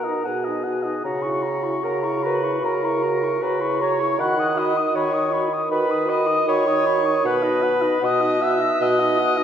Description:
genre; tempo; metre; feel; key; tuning
classical, slow romantic movement for wind quintet; 77 BPM; 4/4; rubato; B major; A4 = 440 Hz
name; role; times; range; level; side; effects
mellow hollow silver concert flute; melody; 0.0-9.4 s; F#5 to F#6; -27 LUFS; left 6 dB; none
mellow oboe; second line; 0.0-9.4 s; D#5 to D#6; -27 LUFS; left 2 dB; none
clear clarinet; accompaniment; 0.0-9.4 s; F#4 to F#5; -23 LUFS; right 3 dB; none
warm French horn; accompaniment; 0.0-9.4 s; D#4 to F#4; -28 LUFS; left 1 dB; none
warm bassoon; bass; 0.0-9.4 s; B2 to D#3; -25 LUFS; right 2 dB; none
room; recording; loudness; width
wet concert hall reverb, RT60 2.2 s; heard from further back in the room; -19 LUFS; side -8 dB against mid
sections
0.0-9.4 A section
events
none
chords
0.0 B; 1.1 F#7/C#; 4.2 B/D#; 7.3 B

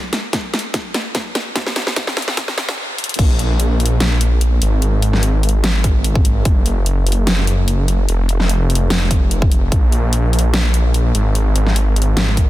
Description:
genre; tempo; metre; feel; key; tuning
future bass; 147 BPM; 4/4; swing 54% on 16ths, half-time; unclear; A4 = 440 Hz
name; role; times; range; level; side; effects
dubstep drum kit; drums; 0.1-12.5 s; crash cymbal, hi-hat, snare drum; -21 LUFS; equal; none
electronic kick drum; drums; 0.3-3.3, 5.8-6.5, 9.1-9.8, 12.4-12.5 s; none; -16 LUFS; equal; none
wide detuned saw bass; bass; 3.2-12.5 s; F1 to Bb1; -15 LUFS; equal; chorus, sidechain pumping
room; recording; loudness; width
little or no reverb; dense, heavily limited modern master, high-pass filter; -14 LUFS; side -15 dB against mid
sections
0.0-3.2 A section; 3.2-12.5 B section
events
build-up 0.0-3.2; drum fill 0.0-2.8, 3.0; filter sweep 0.0-3.2; drop 3.2-12.5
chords
none

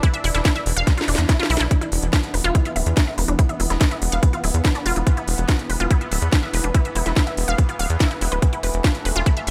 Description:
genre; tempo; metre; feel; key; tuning
psychedelic trance; 143 BPM; 4/4; straight; unclear; A4 = 440 Hz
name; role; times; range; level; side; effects
bubbling stepped-filter texture; sustained chords; 0.0-9.5 s; E3 to D4; -32 LUFS; equal; chorus, built-in reverb, vintage 12-bit sampler grit, sidechain pumping
unison pluck; riff; 0.0-9.5 s; D4 to F5; -29 LUFS; equal; phaser, sidechain pumping, dub echo
electronic kick drum; drums; 0.0-9.3 s; none; -20 LUFS; equal; none
garage drum kit; drums; 0.0-9.5 s; hi-hat, snare drum; -28 LUFS; equal; none
tight sequencer bass; bass; 0.2-9.5 s; D1 to E2; -24 LUFS; equal; none
swell; sound effects; 1.1-1.7 s; none; -37 LUFS; equal; none
room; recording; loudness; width
digital ambience; none; -20 LUFS; mono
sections
0.0-9.5 A section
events
drum fill 0.9-1.7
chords
0.0 E5

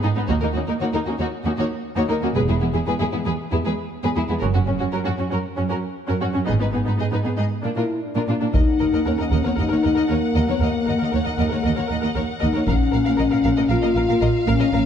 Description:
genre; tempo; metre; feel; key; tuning
cinematic, epic orchestral film score; 116 BPM; 4/4; straight; Eb phrygian, Eb minor from 8.5 s; A4 = 438 Hz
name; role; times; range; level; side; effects
warm symphonic violin section; second line; 0.0-14.8 s; Bb3 to F5; -28 LUFS; left 4 dB; none
warm symphonic viola section; accompaniment; 0.0-14.8 s; G#3 to Bb4; -28 LUFS; right 1 dB; none
dark symphonic cello section; bass; 0.0-14.8 s; Eb2 to Bb2; -24 LUFS; right 3 dB; none
warm symphonic double bass section; bass; 0.3-14.8 s; E1 to Eb2; -24 LUFS; right 3 dB; none
dark French horn section; sustained chords; 7.8-14.9 s; Ab3 to F4; -21 LUFS; left 4 dB; none
warm symphonic violin section; melody; 8.5-14.9 s; F5 to Gb5; -32 LUFS; left 5 dB; none
taiko ensemble; drums; 8.5-9.6, 12.7-13.7 s; none; -23 LUFS; left 1 dB; none
room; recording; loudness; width
moderate scoring stage reverb, RT60 2.0 s; dark, warm production; -19 LUFS; side -8 dB against mid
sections
0.0-8.5 A section; 8.5-14.9 B section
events
build-up 0.0-8.5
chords
0.3 Ebm7; 2.4 E; 4.4 Gb5; 6.5 Abm; 7.5 Bb; 8.5 Ebm; 12.7 Bbm

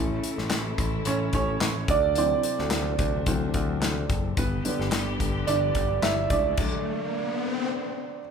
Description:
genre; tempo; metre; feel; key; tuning
piano-driven pop; 109 BPM; 4/4; swing 56% on 16ths; D major; A4 = 440 Hz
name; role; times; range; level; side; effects
warm upright piano; accompaniment; 0.0-8.3 s; D3 to E5; -27 LUFS; right 4 dB; none
warm studio string section; sustained chords; 0.0-6.6 s; C3 to G4; -35 LUFS; left 4 dB; none
picked electric bass; bass; 0.0-6.5 s; F#1 to D2; -30 LUFS; left 1 dB; none
modern studio drum kit; drums; 0.2-6.7 s; crash cymbal, handclaps, hi-hat, kick drum, snare drum; -28 LUFS; left 2 dB; none
riser; sound effects; 6.0-7.7 s; none; -32 LUFS; left 3 dB; none
room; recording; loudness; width
moderate large studio reverb, RT60 0.8 s; band playing live in one room; -23 LUFS; side -6 dB against mid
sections
0.0-8.3 A section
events
upright piano solo 0.0-8.3; riser 6.0-8.3; stop 6.6-8.3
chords
0.0 A; 1.9 D7; 4.4 G; 6.6 D

